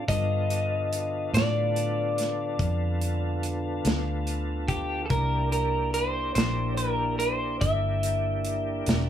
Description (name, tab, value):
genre	slow blues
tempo	48 BPM (dotted quarters)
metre	12/8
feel	straight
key	C mixolydian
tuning	A4 = 440 Hz
part	electric guitar at the edge of break-up	melody	0.0-9.1 s	G4 to E5	-28 LUFS	left 2 dB	none
part	tonewheel organ	sustained chords	0.0-9.1 s	D3 to A4	-33 LUFS	right 1 dB	chorus vibrato, slow rotary speaker
part	vintage muted fingered electric bass	bass	0.0-9.1 s	E1 to A2	-29 LUFS	equal	none
part	natural country drum kit	drums	0.1-9.1 s	hi-hat, kick drum, snare drum	-29 LUFS	right 1 dB	none
room	moderate small room reverb, RT60 0.5 s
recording	none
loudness	-24 LUFS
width	side -10 dB against mid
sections	0.0-9.1 A section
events	none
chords	0.1 G9; 5.1 C9